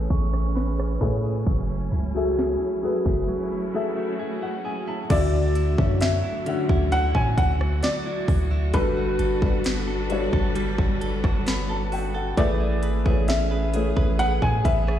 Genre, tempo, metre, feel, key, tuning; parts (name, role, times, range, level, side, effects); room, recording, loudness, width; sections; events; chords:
contemporary R&B; 66 BPM; 4/4; straight; A4 = 441 Hz
felt-muted upright piano; accompaniment; 0.0-15.0 s; D3 to B5; -28 LUFS; left 4 dB
warm studio string section; sustained chords; 0.0-15.0 s; D3 to G#5; -34 LUFS; left 1 dB
direct-recorded clean electric guitar; arpeggios; 0.0-15.0 s; D3 to B4; -31 LUFS; right 7 dB; tape echo
long sustained 808-style bass; bass; 0.0-15.0 s; F#1 to A2; -25 LUFS; equal
trap drum kit; drums; 0.1-15.0 s; crash cymbal, hi-hat, kick drum, rim click, snare drum; -25 LUFS; equal
large celesta; texture; 0.1-1.9 s; C#6; -41 LUFS; right 6 dB; tape echo
dark baby grand piano; melody; 5.1-15.0 s; B4 to G#5; -28 LUFS; left 1 dB; tape echo
studio ambience; played on a big sound system in a bare room, stone room reverb, low-pass filter; -21 LUFS; side -10 dB against mid
0.0-5.1 A section; 5.1-15.0 B section
filter sweep 0.0-5.1; break 3.3-5.1
0.0 Amaj9; 1.5 F#m9; 5.1 Dmaj9; 8.7 Gmaj9; 12.4 Amaj9